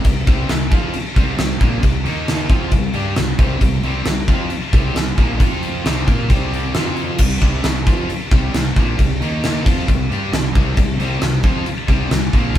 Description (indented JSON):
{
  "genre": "hard rock",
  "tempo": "134 BPM",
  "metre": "4/4",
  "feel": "straight",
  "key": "C minor",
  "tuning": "A4 = 440 Hz",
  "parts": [
    { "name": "cranked stack guitar", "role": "riff", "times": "0.0-12.6 s", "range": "Bb2 to Bb4", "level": "-26 LUFS", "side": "right 5 dB", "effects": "overdrive" },
    { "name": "high-gain distorted guitar", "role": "riff", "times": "0.0-12.6 s", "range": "Bb2 to Bb4", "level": "-26 LUFS", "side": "left 4 dB", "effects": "distortion" },
    { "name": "overdriven electric guitar", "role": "riff", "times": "0.0-7.2, 10.8-12.6 s", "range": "Bb2 to Bb4", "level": "-28 LUFS", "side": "left 1 dB", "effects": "none" },
    { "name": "huge arena drum kit", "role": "drums", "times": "0.0-12.6 s", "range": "crash cymbal, kick drum, snare drum", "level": "-16 LUFS", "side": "equal", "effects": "none" },
    { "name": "fuzz fingered electric bass", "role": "bass", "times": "0.1-12.6 s", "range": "Bb1 to Bb2", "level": "-23 LUFS", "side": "equal", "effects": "overdrive" }
  ],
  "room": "moderate small room reverb, RT60 0.5 s",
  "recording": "band playing live in one room",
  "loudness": "-15 LUFS",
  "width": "side -12 dB against mid",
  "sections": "0.0-7.2 A section; 7.2-12.6 A section",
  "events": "none",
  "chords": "0.0 C5; 2.1 Eb5; 2.5 C5; 5.4 F5; 5.9 C5; 6.7 F5; 7.2 C5; 9.2 Eb5; 9.7 C5"
}